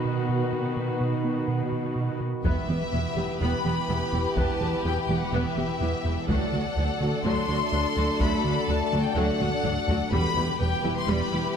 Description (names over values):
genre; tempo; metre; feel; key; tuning
cinematic, hybrid orchestral and electronic film score; 125 BPM; 4/4; straight; E minor; A4 = 440 Hz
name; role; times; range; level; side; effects
rich symphonic viola section; accompaniment; 0.0-11.4 s; F#3 to G4; -32 LUFS; right 1 dB; none
analog drone; sustained chords; 0.0-11.6 s; D#3 to B4; -32 LUFS; left 1 dB; chorus
rich symphonic cello section; bass; 0.0-11.4 s; D2 to B2; -32 LUFS; right 2 dB; none
round analog bass; riff; 0.1-11.5 s; D2 to B3; -30 LUFS; right 2 dB; none
rich studio violin section; second line; 2.4-11.6 s; G4 to D5; -32 LUFS; left 2 dB; none
taiko ensemble; drums; 2.4-10.6 s; none; -31 LUFS; left 1 dB; none
warm symphonic violin section; melody; 2.5-11.5 s; E5 to C6; -31 LUFS; left 5 dB; none
warm symphonic double bass section; bass; 2.5-11.4 s; E1 to D2; -33 LUFS; right 3 dB; none
room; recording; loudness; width
moderate scoring stage reverb, RT60 2.1 s; none; -23 LUFS; side -7 dB against mid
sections
0.0-2.4 A section; 2.4-11.6 B section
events
build-up 0.0-2.4; filter sweep 0.0-2.4; drum fill 9.4-10.1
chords
0.0 B; 2.4 Em; 6.3 D; 10.1 Em